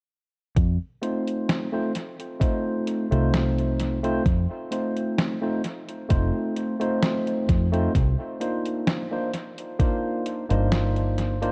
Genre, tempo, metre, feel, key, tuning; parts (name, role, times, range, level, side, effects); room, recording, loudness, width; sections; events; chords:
vaporwave; 65 BPM; 4/4; straight; A4 = 441 Hz
fingered electric bass; bass; 0.6-11.5 s; F1 to F2; -26 LUFS; equal; tube saturation
detuned 8-bit digital drum machine; drums; 0.6-11.5 s; hi-hat, snare drum; -32 LUFS; equal; studio reverb, tape echo
electronic kick drum; drums; 0.6-10.0 s; -25 LUFS; equal; studio reverb
barky tine electric piano; accompaniment; 1.0-11.5 s; A3 to C5; -28 LUFS; equal; subtle chorus, vintage 12-bit sampler grit, tape echo
moderate echo chamber reverb, RT60 1.9 s; echo-heavy mix, cassette tape; -25 LUFS; mono
0.6-11.5 A section
0.6 F7; 8.0 Cm11